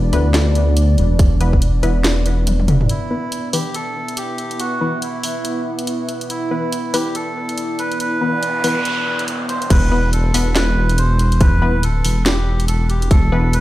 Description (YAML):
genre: deep dubstep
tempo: 141 BPM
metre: 4/4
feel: swing 60% on 16ths, half-time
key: E minor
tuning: A4 = 438 Hz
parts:
  - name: deep dark ambient pad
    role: sustained chords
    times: 0.0-9.7 s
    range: B3 to E5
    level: -25 LUFS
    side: equal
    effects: chorus, built-in reverb
  - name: dark detuned saw bass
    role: bass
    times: 0.0-2.9, 9.7-13.6 s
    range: E1 to D2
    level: -15 LUFS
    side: equal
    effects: none
  - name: filtered dub chord stab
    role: stabs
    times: 0.1-13.4 s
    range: E3 to B4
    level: -24 LUFS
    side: left 2 dB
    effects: chorus, vintage 12-bit sampler grit, dub echo
  - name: garage drum kit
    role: drums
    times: 0.1-13.6 s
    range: crash cymbal, hi-hat, snare drum, toms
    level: -22 LUFS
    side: equal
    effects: studio reverb
  - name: electronic kick drum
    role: drums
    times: 1.2-1.6, 9.7-13.2 s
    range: none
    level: -12 LUFS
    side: equal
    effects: studio reverb
  - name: melodica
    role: melody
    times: 2.9-13.6 s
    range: E4 to C5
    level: -23 LUFS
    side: right 1 dB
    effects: dub echo
  - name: noise sweep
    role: sound effects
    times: 8.2-9.7 s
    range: none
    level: -26 LUFS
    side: right 3 dB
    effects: none
room: light reverb, digital ambience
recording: played on a big sound system in a bare room, stone room reverb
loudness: -15 LUFS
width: side -16 dB against mid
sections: 0.0-2.9 A section; 2.9-9.7 B section; 9.7-13.6 C section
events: drum fill 2.5-2.9; noise sweep 8.2-9.7; drop 9.7-13.6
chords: 0.0 E5